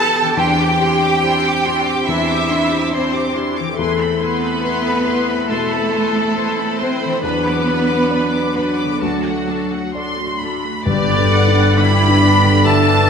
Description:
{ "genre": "cinematic, emotional film score for orchestra", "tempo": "64-71 BPM", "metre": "4/4", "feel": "rubato", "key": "unclear", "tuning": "A4 = 441 Hz", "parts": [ { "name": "rich studio violin section", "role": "melody", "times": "0.0-13.1 s", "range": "D5 to D6", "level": "-22 LUFS", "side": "left 1 dB", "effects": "none" }, { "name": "clear clarinet", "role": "second line", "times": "0.0-9.9 s", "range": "F#4 to A5", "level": "-25 LUFS", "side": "left 1 dB", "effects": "none" }, { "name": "rich studio violin section", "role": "second line", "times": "0.0-13.1 s", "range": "F#4 to A5", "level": "-22 LUFS", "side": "equal", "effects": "none" }, { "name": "clear symphonic viola section", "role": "accompaniment", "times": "0.0-13.1 s", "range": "E3 to F#5", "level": "-26 LUFS", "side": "equal", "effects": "none" }, { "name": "felt-muted upright piano", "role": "accompaniment", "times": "0.0-13.1 s", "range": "D2 to D5", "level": "-24 LUFS", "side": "left 2 dB", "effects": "none" }, { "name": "mellow French horn section", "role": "sustained chords", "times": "0.0-13.1 s", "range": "F#3 to G4", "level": "-24 LUFS", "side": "left 1 dB", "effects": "none" }, { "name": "concert harp", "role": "arpeggios", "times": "0.0-13.1 s", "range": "G2 to E5", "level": "-25 LUFS", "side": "left 6 dB", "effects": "none" }, { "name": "rich symphonic cello section", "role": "bass", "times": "0.0-13.1 s", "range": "G2 to A4", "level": "-20 LUFS", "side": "right 3 dB", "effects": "none" }, { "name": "bright concert flute", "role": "second line", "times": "10.9-13.1 s", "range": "D5 to B5", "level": "-24 LUFS", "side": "left 1 dB", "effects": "none" }, { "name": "mellow cor anglais", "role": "second line", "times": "10.9-13.1 s", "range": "B4 to E5", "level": "-24 LUFS", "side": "right 4 dB", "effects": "none" }, { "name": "rich symphonic double bass section", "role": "bass", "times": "10.9-13.1 s", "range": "G1", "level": "-20 LUFS", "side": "equal", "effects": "none" }, { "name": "timpani", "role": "percussion", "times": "10.9-12.2 s", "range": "G2", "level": "-24 LUFS", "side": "left 3 dB", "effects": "none" } ], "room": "wet scoring stage reverb, RT60 1.9 s", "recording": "minimal, uncompressed stereo recording", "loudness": "-14 LUFS", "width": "side -6 dB against mid", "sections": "0.0-10.9 A section; 10.9-13.1 B section", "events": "none", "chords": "0.4 Cadd9/E; 3.8 Amadd9/E; 7.2 Bm/E; 9.0 D; 10.9 G" }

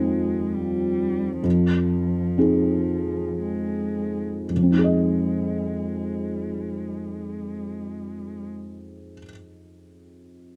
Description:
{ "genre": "neoclassical piano and strings", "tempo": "54-70 BPM", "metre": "3/4", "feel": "rubato", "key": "F minor", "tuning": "A4 = 444 Hz", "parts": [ { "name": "muted cello", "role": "second line", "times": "0.0-8.4 s", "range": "F3 to Ab3", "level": "-33 LUFS", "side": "equal", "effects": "none" }, { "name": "felt-muted upright piano", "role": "accompaniment", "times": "0.0-10.6 s", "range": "F2 to Eb5", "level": "-26 LUFS", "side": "equal", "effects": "none" } ], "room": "light reverb", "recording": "recorded outdoors, with no room sound", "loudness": "-24 LUFS", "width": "mono", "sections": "0.0-4.5 A section; 4.5-7.7 B section", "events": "slowing down 0.0-4.5", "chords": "0.0 Fm7" }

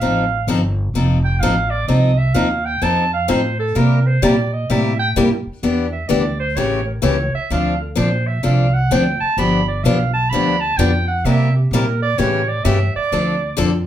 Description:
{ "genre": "acoustic string swing (jazz manouche)", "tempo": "128 BPM", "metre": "4/4", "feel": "swing 64% on 8ths", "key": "C mixolydian", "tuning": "A4 = 439 Hz", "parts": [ { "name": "clear clarinet", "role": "second line", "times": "0.0-13.6 s", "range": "G4 to B5", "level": "-21 LUFS", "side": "right 3 dB", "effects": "none" }, { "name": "picked steel-string acoustic guitar", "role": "accompaniment", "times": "0.0-13.7 s", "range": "C3 to A4", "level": "-18 LUFS", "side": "left 3 dB", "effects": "none" }, { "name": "upright bass", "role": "bass", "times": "0.0-13.9 s", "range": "F1 to C3", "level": "-19 LUFS", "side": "right 1 dB", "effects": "none" } ], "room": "wet studio reverb, RT60 0.5 s", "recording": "heard from further back in the room", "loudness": "-15 LUFS", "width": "side -11 dB against mid", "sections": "0.0-13.9 A section", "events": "clarinet solo 0.0-13.9", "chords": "0.0 F7; 3.8 C7; 5.6 Em7; 6.6 A7; 7.5 Dm7; 9.4 G7; 11.3 C7; 12.2 A7; 13.1 Dm7" }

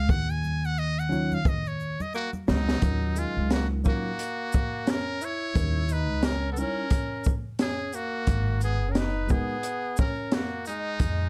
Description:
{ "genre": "hip hop, jazz-hop", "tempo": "88 BPM", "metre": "4/4", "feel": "swing 59% on 16ths", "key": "Eb minor", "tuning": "A4 = 440 Hz", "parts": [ { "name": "trumpet with metal mute", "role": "melody", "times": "0.0-11.3 s", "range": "Eb4 to Ab5", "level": "-35 LUFS", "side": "equal", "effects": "none" }, { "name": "upright bass", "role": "bass", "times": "0.0-11.3 s", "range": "Gb1 to F2", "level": "-30 LUFS", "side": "equal", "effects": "none" }, { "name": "open jazz drum kit", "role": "drums", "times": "0.1-11.2 s", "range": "hi-hat, kick drum, shaker, snare drum", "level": "-29 LUFS", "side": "equal", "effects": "none" }, { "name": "tube shaker and congas", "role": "percussion", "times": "0.1-2.8 s", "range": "none", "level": "-41 LUFS", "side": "equal", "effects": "none" }, { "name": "mellow tine electric piano", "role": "accompaniment", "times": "1.1-9.6 s", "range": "Gb3 to Db5", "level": "-34 LUFS", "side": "equal", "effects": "none" }, { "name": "breathy tenor saxophone", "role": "second line", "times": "2.1-11.3 s", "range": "Gb3 to Fb4", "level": "-36 LUFS", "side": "equal", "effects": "none" } ], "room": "light reverb", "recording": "dark, warm production", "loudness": "-27 LUFS", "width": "mono", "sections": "0.0-2.8 A section; 2.8-11.3 B section", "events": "muted trumpet solo 0.0-2.8; drum fill 0.1-2.8", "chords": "0.0 Ebm7; 2.8 Ebm9; 5.5 Eb7b9; 8.3 Abm9" }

